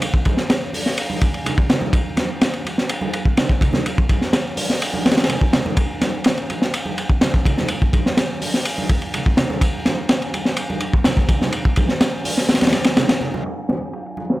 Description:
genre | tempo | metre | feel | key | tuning
breakbeat | 125 BPM | 4/4 | straight | none | none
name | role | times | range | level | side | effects
crunchy breakbeat drum kit | drums | 0.0-14.4 s | hi-hat, kick drum, ride cymbal, snare drum | -17 LUFS | equal | low-pass filter on kick, low-pass filter on cymbals, low-pass filter on hats, low-pass filter on snare, low-pass filter on room
congas | percussion | 0.3-14.3 s | none | -26 LUFS | right 2 dB | none
room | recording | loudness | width
small room ambience | none | -17 LUFS | side -17 dB against mid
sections
0.0-13.5 A section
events
none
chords
none

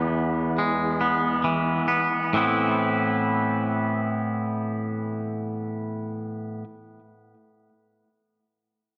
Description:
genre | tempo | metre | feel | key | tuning
rock | 43-50 BPM (dotted quarters) | 6/8 | straight | A minor | A4 = 437 Hz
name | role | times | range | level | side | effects
twangy electric guitar | arpeggios | 0.0-6.6 s | E2 to E4 | -25 LUFS | equal | analog delay
room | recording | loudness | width
wet concert hall reverb, RT60 1.7 s | none | -25 LUFS | mono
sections
0.0-2.3 A section; 2.3-5.1 B section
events
slowing down 0.0-2.3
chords
0.0 E; 2.3 Amadd9

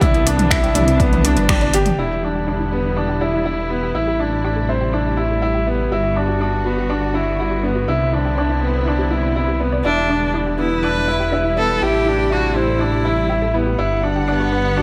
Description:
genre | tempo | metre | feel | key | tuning
piano and strings electronica | 122 BPM | 4/4 | straight | E minor | A4 = 438 Hz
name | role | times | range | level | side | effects
warm symphonic string section | sustained chords | 0.0-14.8 s | C3 to F#5 | -27 LUFS | equal | sidechain pumping
analog pluck | arpeggios | 0.0-14.8 s | D4 to D5 | -30 LUFS | equal | chorus, phaser, sidechain pumping, digital delay
bright concert grand piano | riff | 0.0-14.8 s | B3 to G4 | -23 LUFS | equal | digital delay
dark detuned saw bass | bass | 0.0-14.8 s | E1 to C2 | -24 LUFS | equal | sidechain pumping
deep house drum kit | drums | 0.0-2.0 s | finger snaps, hi-hat, toms | -23 LUFS | equal | overdrive, studio reverb
electronic kick drum | drums | 0.0-1.6 s | none | -21 LUFS | equal | overdrive, studio reverb
clear viola | melody | 9.8-14.8 s | B3 to B4 | -23 LUFS | equal | digital delay
room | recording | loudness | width
light reverb, small room ambience | none | -18 LUFS | mono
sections
0.0-2.0 A section; 2.0-14.8 B section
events
band accent 1.5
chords
0.0 Cmaj9; 2.0 Em7; 3.9 Am7; 5.9 Gmaj7; 7.9 Cmaj9; 9.9 Em7; 11.8 Am7; 13.8 Gmaj7

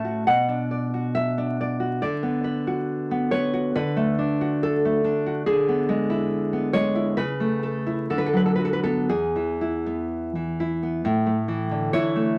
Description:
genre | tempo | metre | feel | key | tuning
romantic piece for solo classical guitar | 58-72 BPM | 2/4 | rubato | A major from 3.8 s | A4 = 441 Hz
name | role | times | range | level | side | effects
nylon-string guitar | solo | 0.0-12.4 s | E2 to A5 | -24 LUFS | equal | none
room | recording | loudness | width
moderate studio reverb, RT60 0.5 s | vinyl crackle | -24 LUFS | mono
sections
0.0-11.1 A section; 11.1-12.4 B section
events
none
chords
0.3 Bm; 2.0 Bm/D; 3.8 D; 5.5 E7/D; 7.2 A/C#; 8.1 Bm/D; 9.1 E; 11.1 A5

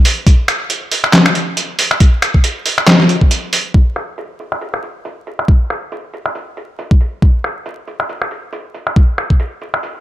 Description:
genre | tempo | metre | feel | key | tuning
dubstep | 138 BPM | 4/4 | swing 56% on 16ths, half-time | none | none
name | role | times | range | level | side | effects
trip hop sampler-style drum kit | drums | 0.1-9.9 s | finger snaps, handclaps, hi-hat, snare drum | -14 LUFS | equal | overdrive, low-pass filter on hats, low-pass filter on snare, low-pass filter on room
electronic kick drum | drums | 0.3-9.4 s | none | -9 LUFS | equal | none
room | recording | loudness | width
light reverb | vinyl crackle | -12 LUFS | side -14 dB against mid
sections
0.0-3.7 A section; 3.7-10.0 B section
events
drop 0.0-3.7; break 3.3-3.7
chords
none

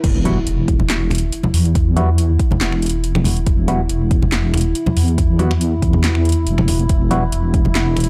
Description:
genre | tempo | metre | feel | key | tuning
deep dubstep | 140 BPM | 4/4 | swing 53% on 16ths, half-time | E minor | A4 = 440 Hz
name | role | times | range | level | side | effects
dark analog pad | sustained chords | 0.0-8.1 s | E4 | -27 LUFS | equal | chorus
deep soft wobble bass | bass | 0.0-8.1 s | E1 to E2 | -19 LUFS | equal | chorus
deep house drum kit | drums | 0.0-8.1 s | crash cymbal, finger snaps, handclaps, hi-hat, snare drum | -26 LUFS | equal | overdrive, high-pass filter on hats, high-pass filter on snare, high-pass filter on cymbals
electronic kick drum | drums | 0.0-7.6 s | none | -19 LUFS | equal | overdrive
impact | sound effects | 0.0-1.8 s | none | -28 LUFS | equal | none
percussive organ stab | stabs | 0.3-7.2 s | G3 to F#4 | -28 LUFS | equal | chorus, phaser, dub echo
congas | percussion | 0.3-8.1 s | none | -24 LUFS | equal | none
room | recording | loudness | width
digital ambience | dry, gritty hardware recording, transformer saturation | -17 LUFS | mono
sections
0.0-8.1 A section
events
drop 0.0-8.1; impact 0.0-1.8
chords
0.0 Emadd9

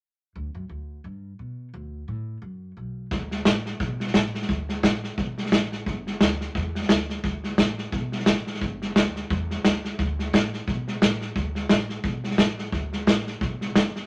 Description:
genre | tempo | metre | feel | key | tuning
rockabilly | 175 BPM | 4/4 | swing 58% on 8ths | D major | A4 = 441 Hz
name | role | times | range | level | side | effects
upright bass | bass | 0.4-14.0 s | G1 to B2 | -36 LUFS | equal | none
vintage drum kit | drums | 3.1-14.0 s | hi-hat, kick drum, snare drum | -25 LUFS | equal | none
room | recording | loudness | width
light reverb | none | -25 LUFS | mono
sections
0.4-3.1 A section; 3.1-14.1 B section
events
none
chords
none

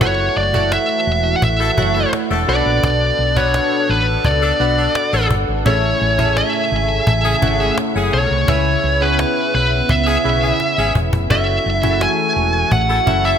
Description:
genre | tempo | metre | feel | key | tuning
1980s-style pop | 85 BPM | 4/4 | straight | F# minor | A4 = 441 Hz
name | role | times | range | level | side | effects
high-gain lead guitar | melody | 0.0-13.4 s | B4 to G#5 | -18 LUFS | equal | distortion, ping-pong delay
chorused retro synth keys | accompaniment | 0.0-13.4 s | A2 to F#5 | -22 LUFS | right 1 dB | none
phased analog pad | sustained chords | 0.0-13.4 s | C#3 to G#5 | -24 LUFS | equal | phaser, chorus, tremolo
hollow-body short-scale fingered electric bass | bass | 0.0-13.3 s | E1 to C#2 | -19 LUFS | equal | none
cajon | drums | 0.0-13.3 s | none | -21 LUFS | equal | none
warm horn section | stabs | 1.6-13.4 s | C#4 to A4 | -24 LUFS | left 4 dB | none
room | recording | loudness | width
moderate plate reverb, RT60 2.0 s, small room reverb | bright 1980s-style digital production | -14 LUFS | side -8 dB against mid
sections
0.0-13.4 A section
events
drum fill 10.6-11.3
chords
0.0 F#m7; 2.5 Bm7; 5.7 Amaj7; 8.5 C#m7; 11.3 F#m7

